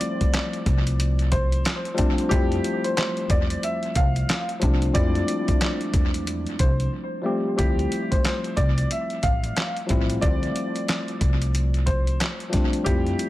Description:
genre	hip hop, boom-bap hip-hop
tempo	91 BPM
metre	4/4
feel	swing 61% on 16ths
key	D minor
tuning	A4 = 442 Hz
part	clear upright piano	melody	0.0-13.3 s	G4 to F5	-30 LUFS	equal	high-pass filter, low-pass filter, tape echo
part	tine electric piano	accompaniment	0.0-13.3 s	F3 to G4	-27 LUFS	left 2 dB	high-pass filter, low-pass filter, tape echo
part	dusty soul sampler-style drum kit	drums	0.0-13.3 s	handclaps, hi-hat, kick drum, snare drum	-24 LUFS	equal	tape echo
part	upright bass	bass	0.7-13.1 s	A1 to F2	-24 LUFS	equal	none
room	light reverb, studio reverb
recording	echo-heavy mix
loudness	-21 LUFS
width	side -16 dB against mid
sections	0.0-7.6 A section; 7.6-13.3 B section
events	break 6.9-7.6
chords	0.0 Dm11; 2.3 Fmaj9; 7.6 Dm11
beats	0.33 0.99 1.65 | 2.31 2.97 3.63 4.29 | 4.95 5.61 6.27 6.93 | 7.59 8.25 8.90 9.56 | 10.22 10.88 11.54 12.20 | 12.86

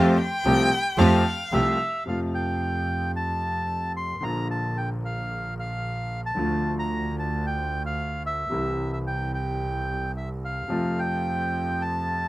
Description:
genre	tango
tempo	111 BPM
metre	4/4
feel	rubato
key	F major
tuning	A4 = 440 Hz
part	warm violin	second line	0.0-1.8 s	C5 to G5	-26 LUFS	left 1 dB	tape echo
part	bright concert grand piano	accompaniment	0.0-12.3 s	Bb1 to G4	-27 LUFS	left 1 dB	none
part	bright studio string section	stabs	0.0-1.8 s	A3 to G4	-30 LUFS	right 3 dB	none
part	clear double bass	bass	0.0-12.3 s	Bb1 to F2	-29 LUFS	right 2 dB	none
part	bandoneon	melody	1.5-12.3 s	E5 to C6	-29 LUFS	equal	none
room	light reverb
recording	rough home demo mix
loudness	-24 LUFS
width	side -17 dB against mid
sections	0.0-2.1 A section; 2.1-12.3 B section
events	violin solo 0.0-2.1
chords	0.0 Fadd9; 2.1 F; 4.2 Bb; 6.4 Dm; 8.5 C; 10.7 F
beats	0.45 0.98 1.52 | 2.07 2.61 3.15 3.69 | 4.23 4.76 5.30 5.83 | 6.37 6.91 7.44 7.98 | 8.52 9.05 9.60 10.15 | 10.70 11.25 11.79

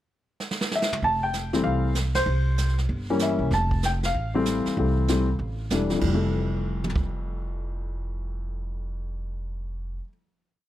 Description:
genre	jazz piano trio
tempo	192 BPM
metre	4/4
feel	swing 62% on 8ths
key	F major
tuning	A4 = 438 Hz
part	jazz brush drum kit	drums	0.4-7.0 s	brushed snare drum, crash cymbal, hi-hat, kick drum, ride cymbal, snare drum, toms	-30 LUFS	right 2 dB	none
part	dark grand piano	melody	0.8-10.1 s	F2 to A5	-25 LUFS	left 2 dB	plate reverb
part	upright bass	bass	1.0-10.0 s	E1 to C2	-27 LUFS	equal	none
room	light reverb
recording	close, detailed microphones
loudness	-23 LUFS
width	side -13 dB against mid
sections	0.0-1.0 pickup bar; 1.0-6.0 A section; 6.0-8.5 final chord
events	drum fill 0.4-1.0; band accent 2.1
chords	0.0 N.C.; 1.0 Fmaj9; 2.3 C7b9; 3.5 Fmaj9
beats	0.09 0.40 0.71 | 1.02 1.33 1.65 1.96 | 2.27 2.58 2.89 3.20 | 3.51 3.83 4.14 4.45 | 4.76 5.08 5.39 5.70 | 6.01 6.33 6.64 6.95 | 7.27 7.58 7.89 8.20

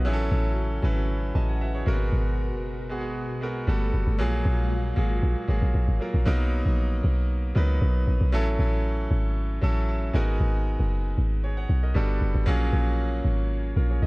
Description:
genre	amapiano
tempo	116 BPM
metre	4/4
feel	straight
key	G# dorian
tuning	A4 = 444 Hz
part	bright concert grand piano	accompaniment	0.0-14.1 s	F#3 to A5	-30 LUFS	right 1 dB	none
part	ensemble organ-string	sustained chords	0.0-6.2 s	A#2 to A#4	-35 LUFS	equal	ensemble chorus
part	deep log drum bass	bass	0.0-14.1 s	F#1 to C#2	-23 LUFS	equal	none
room	small room ambience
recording	worn, warbling old tape, cassette tape, warbly pitch drift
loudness	-22 LUFS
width	side -24 dB against mid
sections	0.0-6.3 A section; 6.3-14.1 B section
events	grand piano fill 1.1-2.1, 9.4-10.4; drop 6.3-14.1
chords	0.1 A6; 1.9 G#m9; 3.7 Gmaj9; 4.2 F#maj9; 6.3 Bmaj7; 8.3 A6; 10.1 G#m9; 12.0 Gmaj9; 12.5 F#maj9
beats	| 0.06 0.57 1.09 1.61 | 2.12 2.64 3.16 3.68 | 4.19 4.71 5.23 5.75 | 6.26 6.78 7.30 7.82 | 8.33 8.85 9.37 9.88 | 10.40 10.92 11.44 11.95 | 12.47 12.99 13.51 14.02

